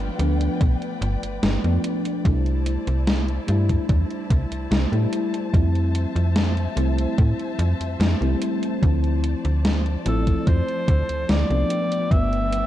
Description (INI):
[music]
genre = vaporwave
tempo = 73 BPM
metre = 4/4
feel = straight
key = C major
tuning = A4 = 440 Hz
[part]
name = edgy alto saxophone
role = melody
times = 0.0-0.2, 10.1-12.7 s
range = F4 to E5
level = -28 LUFS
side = equal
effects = tape echo
[part]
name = mellow FM electric piano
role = accompaniment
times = 0.0-12.7 s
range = F3 to E4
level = -26 LUFS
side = left 1 dB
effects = wide subtle chorus, analog delay
[part]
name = warm studio string section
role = sustained chords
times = 0.0-12.7 s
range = F3 to A5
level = -34 LUFS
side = left 2 dB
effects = none
[part]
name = slap-like FM bass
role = bass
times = 0.0-12.6 s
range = G1 to A2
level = -22 LUFS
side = equal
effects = none
[part]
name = gated 80s digital drum machine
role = drums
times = 0.0-12.7 s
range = hi-hat, snare drum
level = -26 LUFS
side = equal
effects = gated reverb, gated reverb snare
[part]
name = electronic kick drum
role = drums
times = 0.6-12.3 s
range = none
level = -19 LUFS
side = equal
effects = none
[sound]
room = light reverb, digital ambience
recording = dark, warm production, cassette tape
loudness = -19 LUFS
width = side -13 dB against mid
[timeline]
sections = 0.0-12.7 A section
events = none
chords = 0.0 G7; 2.3 C69; 5.5 Fmaj7; 8.8 Dm7; 11.7 G7